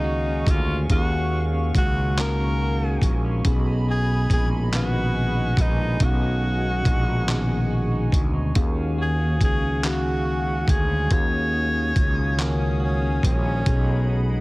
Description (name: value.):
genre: slow six-eight R&B.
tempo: 47 BPM (dotted quarters).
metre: 6/8.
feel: straight.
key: Eb minor.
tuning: A4 = 440 Hz.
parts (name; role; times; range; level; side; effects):
breathy tenor saxophone; melody; 0.0-14.2 s; Db4 to Db5; -28 LUFS; equal; none.
clean electric guitar; second line; 0.0-14.4 s; B2 to Gb4; -32 LUFS; right 2 dB; none.
mellow tine electric piano; accompaniment; 0.0-14.4 s; B2 to F5; -28 LUFS; left 1 dB; slow stereo tremolo.
hollow soft pad; sustained chords; 0.0-14.4 s; Ab4 to Eb6; -36 LUFS; equal; chorus.
fretless electric bass; bass; 0.0-14.4 s; Bb1 to Eb2; -24 LUFS; equal; none.
dusty soul sampler-style drum kit; drums; 0.5-13.9 s; handclaps, hi-hat, kick drum; -22 LUFS; equal; none.
room: digital ambience.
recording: heavily compressed radio sound.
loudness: -20 LUFS.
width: side -22 dB against mid.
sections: 0.0-14.4 A section.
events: none.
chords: 0.0 Ebm11; 3.4 B6; 8.6 Ebm11; 13.7 B6.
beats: | 0.90 2.17 | 3.45 4.72 | 6.00 7.28 | 8.55 9.83 | 11.11 12.38 | 13.66.